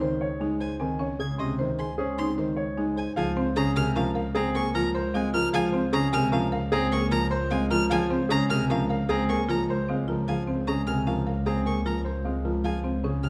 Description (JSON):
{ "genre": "classical, minimalist pattern music", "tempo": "152 BPM", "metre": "6/4", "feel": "straight", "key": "Db major", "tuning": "A4 = 440 Hz", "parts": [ { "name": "warm concert grand piano", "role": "melody", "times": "0.0-13.3 s", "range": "Ab4 to C6", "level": "-34 LUFS", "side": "equal", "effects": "none" }, { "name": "warm grand piano", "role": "accompaniment", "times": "0.0-13.3 s", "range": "C3 to Db4", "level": "-32 LUFS", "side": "equal", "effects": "none" }, { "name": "buzzing marimba with medium hard mallets", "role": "arpeggios", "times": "0.0-13.3 s", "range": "C4 to C5", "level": "-33 LUFS", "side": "equal", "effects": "none" }, { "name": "rich studio double bass section", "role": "bass", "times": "0.0-13.3 s", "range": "Db2", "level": "-32 LUFS", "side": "equal", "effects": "none" }, { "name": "rich violin", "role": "arpeggios", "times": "0.6-13.3 s", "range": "Eb5 to Ab6", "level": "-35 LUFS", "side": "equal", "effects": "none" } ], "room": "moderate recital hall reverb, RT60 1.7 s", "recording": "close, detailed microphones, lossy compression artefacts", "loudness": "-26 LUFS", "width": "mono", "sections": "0.0-3.2 A section; 3.2-13.3 B section", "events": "none", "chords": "0.0 Absus4/Db; 3.2 Db6" }